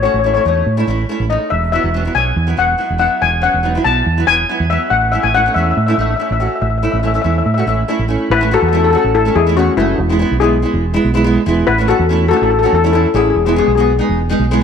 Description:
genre	calypso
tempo	142 BPM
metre	4/4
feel	straight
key	unclear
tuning	A4 = 440 Hz
part	steel pan	melody	0.0-13.9 s	C#4 to A5	-15 LUFS	left 6 dB	none
part	nylon-string guitar	accompaniment	0.0-14.6 s	F#3 to F#4	-19 LUFS	right 3 dB	double-tracked left and right
part	fingered electric bass	bass	0.0-14.6 s	E1 to A2	-17 LUFS	right 2 dB	none
room	moderate echo chamber reverb, RT60 1.8 s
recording	none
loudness	-12 LUFS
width	side -7 dB against mid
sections	0.0-8.3 A section; 8.3-14.6 B section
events	none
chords	0.0 A; 1.5 Esus2; 4.9 A; 10.0 E; 11.7 A; 13.4 E

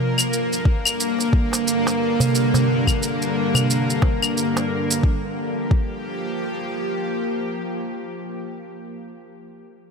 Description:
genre	organic downtempo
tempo	89 BPM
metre	4/4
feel	swing 58% on 16ths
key	G minor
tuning	A4 = 440 Hz
part	bowed-like drone	sustained chords	0.0-8.5 s	G2 to Bb4	-22 LUFS	equal	built-in reverb, sidechain pumping
part	claves and shaker	drums	0.2-5.0 s	none	-23 LUFS	left 1 dB	overdrive
part	electronic kick drum	drums	0.7-5.9 s	none	-18 LUFS	equal	overdrive
part	darbuka	percussion	1.2-4.7 s	none	-23 LUFS	right 2 dB	none
room	light reverb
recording	none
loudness	-19 LUFS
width	side -5 dB against mid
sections	0.0-5.0 A section; 5.0-7.7 B section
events	none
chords	0.0 Bb/G; 5.0 Gm7

